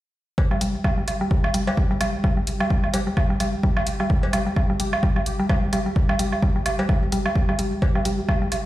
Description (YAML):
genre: minimal techno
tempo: 129 BPM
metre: 4/4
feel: swing 57% on 16ths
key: unclear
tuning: A4 = 437 Hz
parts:
  - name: electronic kick drum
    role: drums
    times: 0.4-8.4 s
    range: none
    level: -21 LUFS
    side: equal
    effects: none
  - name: cowbell and woodblock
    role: percussion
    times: 0.4-8.6 s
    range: none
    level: -28 LUFS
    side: right 2 dB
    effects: ping-pong delay
  - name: pulsing gated texture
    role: texture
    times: 0.5-8.7 s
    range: G4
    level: -34 LUFS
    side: equal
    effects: chorus, built-in reverb, sidechain pumping
  - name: mallet-like synth pluck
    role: riff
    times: 0.5-8.5 s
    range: G3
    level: -26 LUFS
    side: equal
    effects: chorus, sidechain pumping, tape echo
  - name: electronic hi-hat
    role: drums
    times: 0.6-8.6 s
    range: none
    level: -31 LUFS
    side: left 1 dB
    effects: none
room: moderate studio reverb, RT60 0.6 s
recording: played on a big sound system in a bare room, large studio reverb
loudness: -20 LUFS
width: side -15 dB against mid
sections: 0.4-8.7 A section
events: none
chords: none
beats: | 0.38 0.84 1.31 1.77 | 2.24 2.71 3.17 3.63 | 4.10 4.57 5.03 5.50 | 5.96 6.43 6.89 7.36 | 7.82 8.29